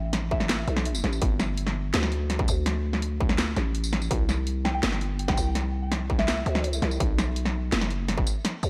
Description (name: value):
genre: half-time drum and bass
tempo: 166 BPM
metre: 4/4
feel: half-time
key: unclear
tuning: A4 = 440 Hz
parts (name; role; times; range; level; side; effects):
- growling 808-style bass; bass; 0.0-8.7 s; F#1 to D2; -30 LUFS; equal; tube saturation
- drum and bass drum kit; drums; 0.1-8.7 s; hi-hat, snare drum, tambourine; -31 LUFS; equal; none
- soft synth bell; melody; 0.3-0.5, 4.6-6.7 s; E5 to G5; -39 LUFS; equal; chorus, delay
- electronic kick drum; drums; 0.3-8.2 s; none; -29 LUFS; equal; distortion
room: light reverb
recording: none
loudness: -26 LUFS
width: mono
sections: 0.0-8.7 A section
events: none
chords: 0.0 A5; 1.2 G5; 4.1 C5; 7.0 B5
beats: 0.13 0.49 0.86 | 1.22 1.58 1.94 2.30 | 2.66 3.02 3.39 3.75 | 4.11 4.47 4.83 5.19 | 5.55 5.92 6.28 6.64 | 7.00 7.36 7.72 8.09 | 8.45